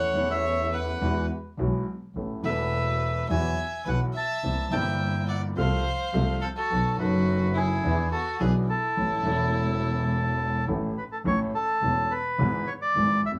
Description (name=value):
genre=tango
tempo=106 BPM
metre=4/4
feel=rubato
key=unclear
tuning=A4 = 441 Hz
part: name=bandoneon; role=melody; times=0.0-13.3 s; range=G#4 to A5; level=-31 LUFS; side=equal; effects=none
part: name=clear violin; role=second line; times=0.0-10.6 s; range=E4 to E5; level=-36 LUFS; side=equal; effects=none
part: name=warm baby grand piano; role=accompaniment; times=0.0-13.4 s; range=E1 to A4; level=-32 LUFS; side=equal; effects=none
part: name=warm double bass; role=bass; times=0.0-13.4 s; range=E1 to E2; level=-30 LUFS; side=equal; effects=none
room=moderate club reverb, RT60 0.5 s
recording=none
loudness=-26 LUFS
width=mono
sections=0.0-11.3 A section; 11.3-13.4 A section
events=none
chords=0.0 A/E; 1.0 Eadd9; 2.2 Asus2; 3.3 Esus2; 4.4 C7; 5.6 F/C; 6.7 B7; 7.8 E7; 9.0 A; 12.4 E/G#